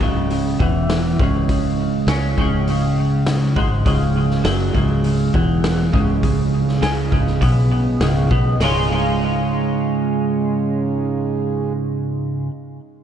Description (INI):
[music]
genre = psychedelic rock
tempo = 101 BPM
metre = 4/4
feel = straight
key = Db mixolydian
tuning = A4 = 439 Hz
[part]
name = twelve-string electric guitar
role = riff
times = 0.0-12.5 s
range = Db2 to F4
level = -18 LUFS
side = right 1 dB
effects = flanger, double-tracked left and right, tape echo
[part]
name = fingered electric bass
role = bass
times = 0.0-12.4 s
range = Db1 to Db2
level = -23 LUFS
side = left 1 dB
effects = none
[part]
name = raw garage drum kit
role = drums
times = 0.0-8.7 s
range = hi-hat, kick drum, snare drum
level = -22 LUFS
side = left 1 dB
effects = tape echo
[part]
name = overdriven combo organ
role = sustained chords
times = 3.9-11.7 s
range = Ab3 to Ab4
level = -29 LUFS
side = right 4 dB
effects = spring reverb
[sound]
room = light reverb, small room ambience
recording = echo-heavy mix, nothing above 10.9 kHz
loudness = -16 LUFS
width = side -9 dB against mid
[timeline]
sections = 0.0-8.6 A section; 8.6-11.0 B section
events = none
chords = 0.0 Db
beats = 0.30 0.89 | 1.48 2.07 2.67 3.26 | 3.85 4.44 5.04 5.63 | 6.22 6.82 7.41 8.00 | 8.60 9.19 9.78 10.37